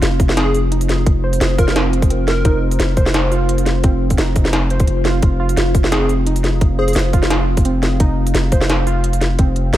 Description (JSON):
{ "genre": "half-time drum and bass", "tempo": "173 BPM", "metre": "4/4", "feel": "swing 54% on 16ths, half-time", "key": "unclear", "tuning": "A4 = 440 Hz", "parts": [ { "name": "deep dark ambient pad", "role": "sustained chords", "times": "0.0-9.8 s", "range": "C4 to F5", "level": "-24 LUFS", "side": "equal", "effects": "chorus, built-in reverb, vintage 12-bit sampler grit, sidechain pumping" }, { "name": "long sustained 808-style bass", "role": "bass", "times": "0.0-9.8 s", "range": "F1", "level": "-17 LUFS", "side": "equal", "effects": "none" }, { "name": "industrial drum kit", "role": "drums", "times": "0.0-9.8 s", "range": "hi-hat, snare drum", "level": "-20 LUFS", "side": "equal", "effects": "none" }, { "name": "electronic kick drum", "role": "drums", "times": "0.2-9.5 s", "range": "none", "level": "-14 LUFS", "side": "equal", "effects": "none" }, { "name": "plucky unison lead", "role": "melody", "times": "0.4-2.6, 5.9-6.9 s", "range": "Ab4 to Bb4", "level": "-25 LUFS", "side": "left 1 dB", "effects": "dub echo" }, { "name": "warbly dusty pluck", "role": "arpeggios", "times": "0.4-9.8 s", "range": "C4 to C5", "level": "-24 LUFS", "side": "right 3 dB", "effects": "chorus, digital delay" } ], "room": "light reverb", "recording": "none", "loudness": "-13 LUFS", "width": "side -13 dB against mid", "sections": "0.0-9.8 A section", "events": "none", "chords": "0.0 F5" }